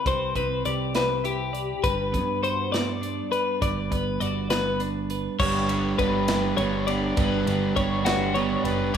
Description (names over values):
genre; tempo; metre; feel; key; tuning
math rock and midwest emo; 68 BPM (dotted quarters); 6/8; straight; G major, G lydian from 5.4 s; A4 = 440 Hz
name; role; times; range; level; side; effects
twelve-string electric guitar; accompaniment; 0.0-9.0 s; G2 to D5; -29 LUFS; right 6 dB; none
twelve-string electric guitar; arpeggios; 0.0-9.0 s; F#4 to D5; -26 LUFS; left 5 dB; spring reverb
picked electric bass; bass; 0.1-9.0 s; F#1 to G2; -31 LUFS; equal; none
modern studio drum kit; drums; 0.1-9.0 s; crash cymbal, hi-hat, kick drum, ride cymbal, snare drum; -30 LUFS; right 1 dB; none
crunchy overdriven guitar; riff; 5.4-9.0 s; G3 to G4; -28 LUFS; right 1 dB; none
room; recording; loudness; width
moderate recital hall reverb, RT60 1.5 s; recorded in a church or concert hall; -22 LUFS; side -8 dB against mid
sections
0.0-5.4 A section; 5.4-9.0 B section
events
none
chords
0.0 Cmaj9; 1.8 Gmaj7